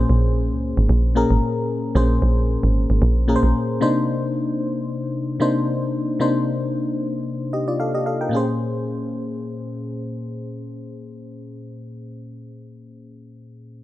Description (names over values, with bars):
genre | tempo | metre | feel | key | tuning
amapiano | 113 BPM | 4/4 | swing 55% on 16ths | Bb minor | A4 = 440 Hz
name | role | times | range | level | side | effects
FM electric piano | accompaniment | 0.0-13.8 s | Bb2 to G5 | -22 LUFS | left 2 dB | chorus
deep log drum bass | bass | 0.0-3.5 s | Ab1 to Db2 | -17 LUFS | right 1 dB | none
room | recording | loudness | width
digital ambience | none | -19 LUFS | side -15 dB against mid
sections
0.0-8.3 A section; 8.3-12.6 B section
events
drop 0.0-8.3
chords
0.0 Bbm9; 3.8 Cm9; 8.3 Bbm9